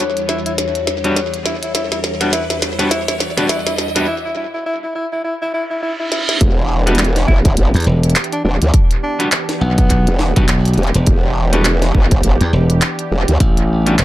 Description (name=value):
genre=glitch hop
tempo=103 BPM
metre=4/4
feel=swing 59% on 16ths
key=E dorian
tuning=A4 = 440 Hz
part: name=warm analog pad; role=sustained chords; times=0.0-14.0 s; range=E2 to G4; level=-26 LUFS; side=right 2 dB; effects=chorus, tremolo, sidechain pumping
part: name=semi-hollow electric guitar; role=stabs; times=0.0-13.9 s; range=G3 to F#4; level=-22 LUFS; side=equal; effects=sidechain pumping, tape echo
part: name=glitchy drum kit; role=drums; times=0.0-14.0 s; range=handclaps, hi-hat, snare drum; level=-20 LUFS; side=equal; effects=high-pass filter on hats, high-pass filter on snare, high-pass filter on room, tape echo
part: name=riser and reverse cymbal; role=sound effects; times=0.1-6.4 s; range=none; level=-25 LUFS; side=right 2 dB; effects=none
part: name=warbly tape-like pad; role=texture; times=0.0-14.0 s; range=E4 to F#5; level=-28 LUFS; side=left 7 dB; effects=chorus, built-in reverb, sidechain pumping
part: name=breathy tenor saxophone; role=melody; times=0.3-10.4 s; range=B3 to E4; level=-23 LUFS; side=equal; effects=tape echo
part: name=growl bass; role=bass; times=6.4-13.4 s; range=E1 to D2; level=-14 LUFS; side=equal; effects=chorus
part: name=electronic kick drum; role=drums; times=6.4-13.5 s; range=none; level=-14 LUFS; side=equal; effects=none
part: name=glassy slap bass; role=bass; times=7.7-14.0 s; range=E1 to E2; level=-14 LUFS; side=equal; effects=none
room=light reverb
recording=echo-heavy mix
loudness=-13 LUFS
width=side -15 dB against mid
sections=0.0-6.4 A section; 6.4-14.0 B section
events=build-up 0.0-6.4; drum fill 0.0-4.1, 6.1; riser 0.1-4.1; break 4.1-6.4; reverse cymbal 5.7-6.4; drop 6.4-14.0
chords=0.0 Em7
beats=0.00 0.58 1.17 | 1.75 2.33 2.92 3.50 | 4.08 4.66 5.25 5.83 | 6.41 6.99 7.58 8.16 | 8.74 9.32 9.90 10.49 | 11.07 11.65 12.23 12.82 | 13.40 13.98